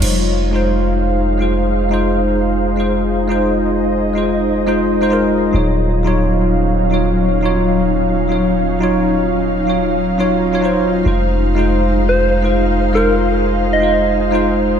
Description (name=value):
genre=drum and bass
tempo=174 BPM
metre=4/4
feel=swing 53% on 16ths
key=unclear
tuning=A4 = 440 Hz
part: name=bell-like tine electric piano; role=accompaniment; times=0.0-14.8 s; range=Gb3 to Db5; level=-16 LUFS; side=equal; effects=analog chorus, tape echo
part: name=ethereal airy pad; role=sustained chords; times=0.0-14.8 s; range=Gb3 to F5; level=-20 LUFS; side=right 1 dB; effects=ensemble chorus, built-in reverb
part: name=long sustained 808-style bass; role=bass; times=0.0-14.8 s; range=Eb1 to F1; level=-19 LUFS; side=equal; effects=none
part: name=soft struck synth lead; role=melody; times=12.1-14.1 s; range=Bb4 to Eb5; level=-17 LUFS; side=equal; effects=chorus, tremolo, tape echo
room=light reverb, digital ambience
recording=none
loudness=-13 LUFS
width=side -8 dB against mid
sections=0.0-14.8 A section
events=filter sweep on ambient pad 0.0-14.8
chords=0.0 Fm7; 5.5 Ebm9; 11.1 Fm7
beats=| 0.02 0.36 0.71 1.05 | 1.40 1.74 2.09 2.43 | 2.78 3.12 3.47 3.81 | 4.16 4.50 4.85 5.19 | 5.54 5.88 6.23 6.57 | 6.92 7.26 7.61 7.95 | 8.30 8.64 8.99 9.33 | 9.68 10.02 10.37 10.71 | 11.05 11.40 11.74 12.09 | 12.43 12.78 13.12 13.47 | 13.81 14.16 14.50